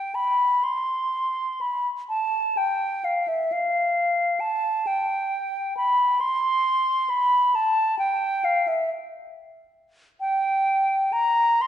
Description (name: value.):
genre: classical, free, expressive piece for unaccompanied flute.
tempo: 44 BPM (dotted quarters).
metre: 6/8.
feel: uneven beats, rubato.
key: unclear.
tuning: A4 = 440 Hz.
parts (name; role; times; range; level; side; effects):
concert flute; solo; 0.0-11.7 s; E5 to C6; -21 LUFS; equal; none.
room: wet recital hall reverb, RT60 1.7 s.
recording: dark, warm production, nothing above 10.7 kHz.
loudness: -21 LUFS.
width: side -10 dB against mid.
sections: 0.0-11.7 A section.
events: none.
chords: none.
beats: 0.65 | 2.10 3.52 | 4.86 6.20 | 7.55 8.90 | 10.22 11.61.